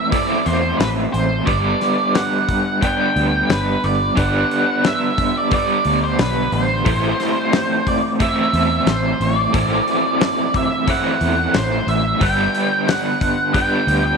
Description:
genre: psychedelic rock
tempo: 89 BPM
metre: 4/4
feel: straight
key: A dorian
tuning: A4 = 441 Hz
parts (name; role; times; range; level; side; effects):
- octave-fuzz lead guitar; melody; 0.0-14.2 s; B4 to G5; -20 LUFS; right 1 dB; distortion, slapback echo
- crunchy overdriven guitar; riff; 0.0-14.2 s; G2 to E4; -20 LUFS; right 1 dB; tremolo
- damped 70s drum kit; drums; 0.1-14.0 s; hi-hat, kick drum, snare drum; -22 LUFS; left 3 dB; none
- fingered electric bass; bass; 0.5-14.1 s; G1 to E2; -22 LUFS; equal; none
room: moderate echo chamber reverb, RT60 2.1 s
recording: 1960s-style stereo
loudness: -15 LUFS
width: side -5 dB against mid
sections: 0.0-14.2 A section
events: none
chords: 0.0 Am; 1.5 G; 6.9 Am; 12.2 G

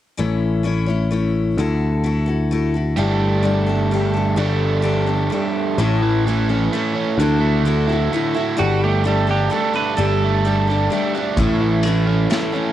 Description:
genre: folk rock and heartland rock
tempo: 129 BPM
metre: 3/4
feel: straight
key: A mixolydian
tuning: A4 = 443 Hz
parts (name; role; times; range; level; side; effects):
- picked steel-string acoustic guitar; accompaniment; 0.2-12.7 s; A2 to C#5; -22 LUFS; left 6 dB; cassette tape
- picked electric bass; bass; 0.2-12.3 s; G1 to D2; -19 LUFS; equal; none
- overdriven electric guitar; riff; 3.0-12.7 s; A2 to A4; -21 LUFS; right 6 dB; cassette tape
- pedal steel guitar; second line; 8.6-10.9 s; F#4 to B4; -23 LUFS; right 6 dB; cassette tape, analog delay
- unplugged drum kit; drums; 11.4-12.4 s; kick drum, ride cymbal, snare drum; -24 LUFS; equal; cassette tape
room: light reverb, small room ambience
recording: home recording on cassette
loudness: -16 LUFS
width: side -12 dB against mid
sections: 0.2-5.8 A section; 5.8-12.7 B section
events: break 5.3-5.8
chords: 0.2 A; 1.6 Dadd9; 3.0 Gsus2; 5.8 A; 7.2 Dadd9; 8.6 Gsus2; 11.4 A

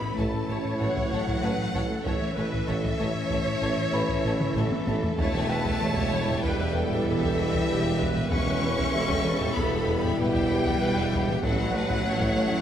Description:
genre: cinematic, hybrid orchestral and electronic film score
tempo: 96 BPM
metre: 5/4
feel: straight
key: E dorian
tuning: A4 = 440 Hz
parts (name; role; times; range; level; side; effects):
- warm symphonic violin section; melody; 0.0-12.6 s; E5 to C#6; -33 LUFS; left 3 dB; none
- warm symphonic viola section; accompaniment; 0.0-12.6 s; E4 to C#5; -32 LUFS; right 1 dB; none
- ethereal airy pad; sustained chords; 0.0-12.6 s; E3 to A4; -35 LUFS; right 1 dB; none
- mellow French horn section; sustained chords; 0.0-12.6 s; B3 to E4; -35 LUFS; left 3 dB; none
- warm trombone section; sustained chords; 0.0-12.6 s; E3 to A3; -35 LUFS; right 2 dB; none
- round analog bass; riff; 0.0-12.6 s; E2 to A3; -33 LUFS; left 1 dB; none
- rich symphonic cello section; bass; 0.0-12.6 s; E3 to C#4; -32 LUFS; right 1 dB; none
- felt-muted upright piano; texture; 0.0-11.5 s; B4 to B5; -39 LUFS; left 3 dB; tape echo
- warm chamber violin section; second line; 0.2-12.6 s; C#4 to E5; -36 LUFS; left 5 dB; none
- clear tuba; bass; 0.2-12.5 s; E1 to A1; -34 LUFS; right 3 dB; none
- warm symphonic double bass section; bass; 0.2-12.6 s; E1 to A1; -34 LUFS; right 3 dB; none
- solo taiko drums; drums; 0.2-12.6 s; none; -33 LUFS; equal; none
room: wet scoring stage reverb, RT60 2.0 s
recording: none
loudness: -23 LUFS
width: side -9 dB against mid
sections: 0.0-12.6 A section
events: drum fill 4.4-5.2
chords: 0.0 A; 5.2 Em; 11.4 A

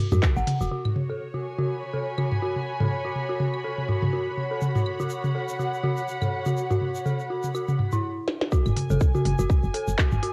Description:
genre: minimal techno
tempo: 123 BPM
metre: 4/4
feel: swing 56% on 16ths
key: unclear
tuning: A4 = 440 Hz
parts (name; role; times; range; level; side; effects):
- dark detuned synth bell; riff; 0.1-10.3 s; E4 to F#5; -33 LUFS; equal; chorus, phaser, sidechain pumping, low-pass filter, cassette tape, tape echo
- woody FM bass; bass; 0.1-0.7, 8.7-10.2 s; E1 to F#2; -28 LUFS; equal; sidechain pumping
- minimal click drum kit; drums; 0.1-0.6, 8.3-10.3 s; handclaps, hi-hat, ride cymbal, snare drum; -32 LUFS; equal; low-pass filter on hats, low-pass filter on cymbals, low-pass filter on snare, low-pass filter on room
- electronic toms and claves; percussion; 0.1-10.2 s; none; -29 LUFS; equal; none
- tube shaker; percussion; 0.1-0.7, 4.6-10.2 s; none; -49 LUFS; equal; none
- electronic kick drum; drums; 0.2-0.3, 8.5-10.1 s; none; -24 LUFS; equal; none
- dark studio string section; texture; 0.7-10.3 s; F#4 to B5; -35 LUFS; equal; sidechain pumping, cassette tape
room: light reverb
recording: home recording on cassette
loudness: -26 LUFS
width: mono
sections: 0.7-8.5 A section; 8.5-10.3 B section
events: band accent 0.2; filter sweep on drum 0.7-8.5; stop 8.0-8.5; drum fill 8.3; drop 8.5-10.3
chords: 0.0 N.C.; 0.7 F#sus4; 8.5 N.C.

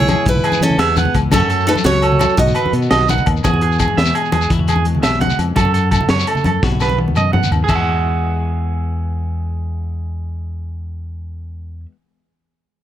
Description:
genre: highlife guitar band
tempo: 113 BPM (dotted quarters)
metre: 12/8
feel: straight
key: E major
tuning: A4 = 441 Hz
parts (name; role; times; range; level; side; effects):
- picked steel-string acoustic guitar; melody; 0.0-3.1 s; B3 to D#5; -18 LUFS; equal; plate reverb
- clean electric guitar; accompaniment; 0.0-12.0 s; E2 to F#4; -26 LUFS; left 8 dB; spring reverb, plate reverb
- electric guitar at the edge of break-up; arpeggios; 0.0-11.9 s; G#4 to F#5; -19 LUFS; right 6 dB; plate reverb, tape echo
- fingered electric bass; bass; 0.0-11.8 s; B1 to E3; -19 LUFS; equal; none
- congas; percussion; 0.0-7.9 s; none; -22 LUFS; equal; none
- crunchy breakbeat drum kit; drums; 0.1-7.8 s; crash cymbal, hi-hat, kick drum, snare drum, toms; -20 LUFS; equal; none
- agogo bells; percussion; 0.1-7.8 s; none; -26 LUFS; left 7 dB; none
- shekere; percussion; 0.1-7.8 s; none; -26 LUFS; left 7 dB; none
room: light reverb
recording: none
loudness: -14 LUFS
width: side -11 dB against mid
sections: 0.0-3.4 A section; 3.4-7.7 B section; 7.7-12.0 C section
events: drum fill 6.6-7.7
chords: 0.0 Eadd9; 1.3 F#m; 2.4 B; 3.4 Eadd9; 5.6 F#m; 6.6 B; 7.7 Eadd9

